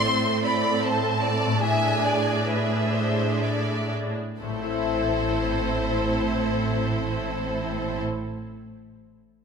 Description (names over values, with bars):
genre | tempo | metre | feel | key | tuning
classical | 58-78 BPM | 3/4 | rubato | A minor | A4 = 440 Hz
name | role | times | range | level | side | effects
warm symphonic violin section | melody | 0.0-8.0 s | C5 to C6 | -29 LUFS | left 1 dB | none
clear symphonic violin section | second line | 0.0-8.0 s | A4 to E5 | -30 LUFS | left 2 dB | none
rich symphonic viola section | accompaniment | 0.0-8.0 s | C4 to A4 | -29 LUFS | right 2 dB | none
concert harp | arpeggios | 0.0-8.9 s | A2 to E5 | -32 LUFS | left 6 dB | none
rich symphonic cello section | bass | 0.0-8.0 s | A2 | -28 LUFS | right 2 dB | none
warm symphonic double bass section | bass | 4.4-8.0 s | A1 | -31 LUFS | right 3 dB | none
room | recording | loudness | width
moderate scoring stage reverb, RT60 1.9 s | minimal, uncompressed stereo recording | -22 LUFS | side -6 dB against mid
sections
0.0-4.4 A section; 4.4-7.2 B section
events
slowing down 0.0-4.4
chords
0.0 Am; 1.6 E7/A; 4.4 Am